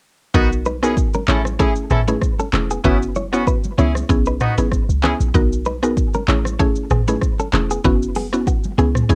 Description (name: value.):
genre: afrobeats.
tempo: 96 BPM.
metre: 4/4.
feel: swing 55% on 16ths.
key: B major.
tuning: A4 = 440 Hz.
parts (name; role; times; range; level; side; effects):
clear horn section; second line; 0.3-5.1 s; B3 to A4; -26 LUFS; equal; none.
mallet-like synth pluck; accompaniment; 0.3-9.2 s; A3 to A#4; -24 LUFS; equal; chorus.
short 808-style bass; bass; 0.3-9.2 s; E1 to C#2; -23 LUFS; equal; none.
afro-pop drum kit; drums; 0.3-9.2 s; handclaps, hi-hat, kick drum, rim click, shaker, toms; -22 LUFS; equal; none.
congas; percussion; 0.4-9.2 s; none; -32 LUFS; equal; none.
direct-recorded clean electric guitar; riff; 0.7-8.9 s; B3 to C#5; -27 LUFS; equal; analog delay.
room: light reverb.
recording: dark, warm production.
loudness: -18 LUFS.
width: mono.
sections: 0.3-9.2 A section.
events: none.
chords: 0.3 Bmaj7; 1.3 Amaj7; 2.8 F#7sus4; 3.8 C#m7; 5.3 Bmaj7; 6.3 Amaj7; 7.8 F#7sus4.